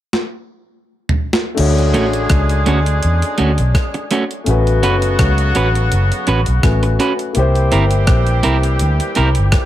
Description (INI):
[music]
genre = lovers rock reggae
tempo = 83 BPM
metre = 4/4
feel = swing 55% on 16ths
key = unclear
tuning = A4 = 440 Hz
[part]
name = clean 12-bit digital drum machine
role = drums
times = 0.1-9.7 s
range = crash cymbal, hi-hat, kick drum, rim click, snare drum, toms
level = -18 LUFS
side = equal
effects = overdrive
[part]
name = warm concert grand piano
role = accompaniment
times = 1.5-9.7 s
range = A3 to C#5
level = -21 LUFS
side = left 4 dB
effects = none
[part]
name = clear horn section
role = second line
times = 1.6-9.7 s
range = C#3 to G#4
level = -22 LUFS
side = right 1 dB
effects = tape echo
[part]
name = vintage muted fingered electric bass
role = bass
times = 1.6-9.5 s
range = F#1 to E2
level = -15 LUFS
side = equal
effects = none
[part]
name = electric guitar at the edge of break-up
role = stabs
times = 1.9-9.3 s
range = A3 to B4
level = -19 LUFS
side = right 3 dB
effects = none
[sound]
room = little or no reverb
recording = none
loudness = -13 LUFS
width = side -13 dB against mid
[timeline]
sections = 0.0-1.6 A section; 1.6-9.7 B section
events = drum fill 0.1-1.6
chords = 0.0 N.C.; 1.6 Dmaj7; 4.5 A69; 7.4 C7